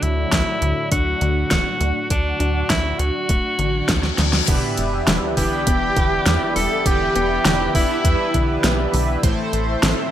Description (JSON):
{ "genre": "synthwave", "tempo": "101 BPM", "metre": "4/4", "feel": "straight", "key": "E minor", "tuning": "A4 = 440 Hz", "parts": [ { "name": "bright tenor saxophone", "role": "melody", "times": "0.0-8.9 s", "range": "D4 to A4", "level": "-23 LUFS", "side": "equal", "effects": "digital delay" }, { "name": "warm analog pad", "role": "sustained chords", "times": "0.0-10.1 s", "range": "A2 to C6", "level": "-27 LUFS", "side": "right 1 dB", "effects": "chorus, sidechain pumping" }, { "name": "tight sequencer bass", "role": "bass", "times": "0.0-9.9 s", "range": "D1 to E2", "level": "-23 LUFS", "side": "equal", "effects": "tube saturation" }, { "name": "pop drum kit", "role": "drums", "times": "0.0-9.9 s", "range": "crash cymbal, hi-hat, snare drum", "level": "-21 LUFS", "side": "equal", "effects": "overdrive, gated reverb" }, { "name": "thumb-piano-like synth pluck", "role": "arpeggios", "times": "0.3-10.1 s", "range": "D3 to D4", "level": "-29 LUFS", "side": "left 4 dB", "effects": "chorus, cassette tape, digital delay" }, { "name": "electronic kick drum", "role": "drums", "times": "0.3-9.4 s", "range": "none", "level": "-21 LUFS", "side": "equal", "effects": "overdrive" }, { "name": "reverse cymbal and sub drop", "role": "sound effects", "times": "3.7-6.9 s", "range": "none", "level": "-28 LUFS", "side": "left 3 dB", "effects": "none" }, { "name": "chorused polysynth", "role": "stabs", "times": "4.5-10.1 s", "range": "A2 to C5", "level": "-25 LUFS", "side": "right 2 dB", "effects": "digital delay" }, { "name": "string machine, violins", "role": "second line", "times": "5.4-8.9 s", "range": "E4 to A4", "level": "-27 LUFS", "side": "equal", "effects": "ensemble chorus, vintage 12-bit sampler grit, digital delay" } ], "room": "moderate plate reverb, RT60 1.2 s", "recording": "bright 1980s-style digital production", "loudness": "-17 LUFS", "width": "side -11 dB against mid", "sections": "0.0-4.5 A section; 4.5-10.1 B section", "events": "reverse cymbal 3.7-4.5; drum fill 4.0-4.5; impact 4.5-6.9", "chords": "0.0 D; 4.5 Em7; 9.2 Am", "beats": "0.32 0.92 1.51 | 2.10 2.70 3.29 3.89 | 4.48 5.08 5.67 6.26 | 6.86 7.45 8.04 8.64 | 9.23 9.83" }